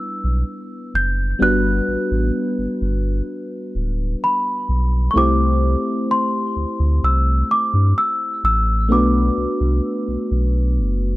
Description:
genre	contemporary R&B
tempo	64 BPM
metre	4/4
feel	straight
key	unclear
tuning	A4 = 439 Hz
part	celesta	melody	0.0-11.2 s	B5 to G6	-21 LUFS	equal	none
part	mellow FM electric piano	accompaniment	0.0-11.2 s	G3 to C5	-22 LUFS	left 1 dB	chorus
part	warm sub bass	bass	0.2-11.2 s	D1 to G2	-18 LUFS	equal	none
room	studio reverb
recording	dry, gritty hardware recording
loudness	-17 LUFS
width	side -18 dB against mid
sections	0.0-11.2 A section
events	none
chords	0.0 Em7; 1.4 Gmaj7; 5.2 C6; 8.9 Bm7

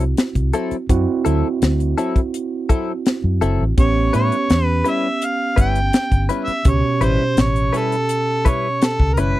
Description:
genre	straight-eighth soul blues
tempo	83 BPM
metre	4/4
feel	straight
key	unclear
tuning	A4 = 440 Hz
part	overdriven tine electric piano	accompaniment	0.0-9.4 s	B2 to G4	-23 LUFS	right 5 dB	none
part	direct-recorded clean electric guitar	stabs	0.0-9.4 s	F#3 to B4	-22 LUFS	left 5 dB	analog chorus
part	vintage muted fingered electric bass	bass	0.0-9.3 s	F#1 to A2	-19 LUFS	equal	none
part	tight funk drum kit	drums	0.0-9.3 s	hi-hat, kick drum, snare drum	-17 LUFS	left 1 dB	none
part	warm harmonica	melody	3.8-9.4 s	A4 to G5	-21 LUFS	equal	overdrive
room	little or no reverb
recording	dry, close 1970s-style studio recording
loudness	-16 LUFS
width	side -15 dB against mid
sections	0.0-9.4 A section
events	none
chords	0.0 D9; 3.8 A9

